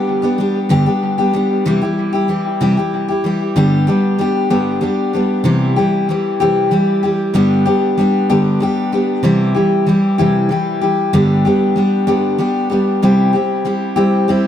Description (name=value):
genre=rock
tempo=63 BPM (dotted quarters)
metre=6/8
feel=straight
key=G major from 3.6 s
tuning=A4 = 440 Hz
part: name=picked steel-string acoustic guitar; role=solo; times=0.0-14.5 s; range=G2 to G4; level=-13 LUFS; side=left 1 dB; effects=dub echo
room=moderate spring reverb, RT60 1.1 s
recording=echo-heavy mix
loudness=-13 LUFS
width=side -10 dB against mid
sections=0.0-3.6 A section; 3.6-14.5 B section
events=none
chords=0.0 G; 1.7 C; 3.6 G; 5.5 C; 7.3 G; 9.2 C; 11.1 G; 13.0 C